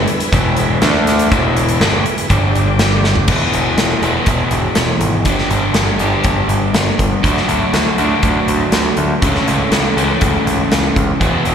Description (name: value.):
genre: classic rock.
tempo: 121 BPM.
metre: 4/4.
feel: straight.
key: unclear.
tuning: A4 = 440 Hz.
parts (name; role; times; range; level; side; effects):
tonewheel organ; sustained chords; 0.0-3.3 s; G3 to D5; -23 LUFS; equal; slow rotary speaker, chorus vibrato.
crunchy overdriven guitar; riff; 0.0-11.5 s; E2 to A4; -16 LUFS; equal; slapback echo.
growling picked electric bass; bass; 0.0-11.5 s; E1 to D2; -18 LUFS; equal; overdrive.
big rock drum kit; drums; 0.1-11.5 s; crash cymbal, hi-hat, kick drum, snare drum, toms; -17 LUFS; equal; none.
room: light reverb, small room ambience.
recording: live gig heard through the venue's PA, recital hall reverb.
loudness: -12 LUFS.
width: side -8 dB against mid.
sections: 0.0-3.3 A section; 3.3-11.5 B section.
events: drum fill 3.0.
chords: 0.0 E; 0.8 D5; 1.3 E; 2.3 G5; 3.3 E; 5.3 G; 7.2 D; 9.2 A/C#.